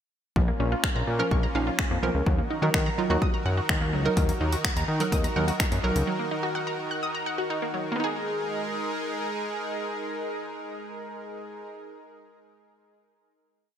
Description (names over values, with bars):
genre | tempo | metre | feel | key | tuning
dance-pop | 126 BPM | 4/4 | straight | G# dorian | A4 = 441 Hz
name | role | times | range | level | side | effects
supersaw pad | sustained chords | 0.4-11.7 s | D#3 to A#4 | -32 LUFS | equal | wide subtle chorus, sidechain pumping
wide unison pluck | arpeggios | 0.4-11.7 s | E#3 to F#6 | -32 LUFS | equal | sidechain pumping, ping-pong delay
fat analog bass | bass | 0.4-6.0 s | A#1 to D#3 | -26 LUFS | equal | sidechain pumping
punchy analog drum machine | drums | 0.4-6.1 s | finger snaps, hi-hat, kick drum | -26 LUFS | equal | gated reverb
hollow square pluck | accompaniment | 1.2-6.1 s | E#3 to A#4 | -30 LUFS | right 2 dB | chorus, sidechain pumping
room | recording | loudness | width
moderate plate reverb, RT60 1.7 s | bright 1980s-style digital production | -24 LUFS | side -9 dB against mid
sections
0.4-8.0 pre-chorus; 8.0-11.8 final chord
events
none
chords
0.4 A#m; 2.3 D#m; 8.0 G#madd9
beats
| 0.36 0.84 1.31 1.79 | 2.27 2.74 3.22 3.69 | 4.17 4.65 5.12 5.60 | 6.08 6.55 7.03 7.50 | 7.98 8.46 8.93 9.41 | 9.88 10.36 10.84 11.31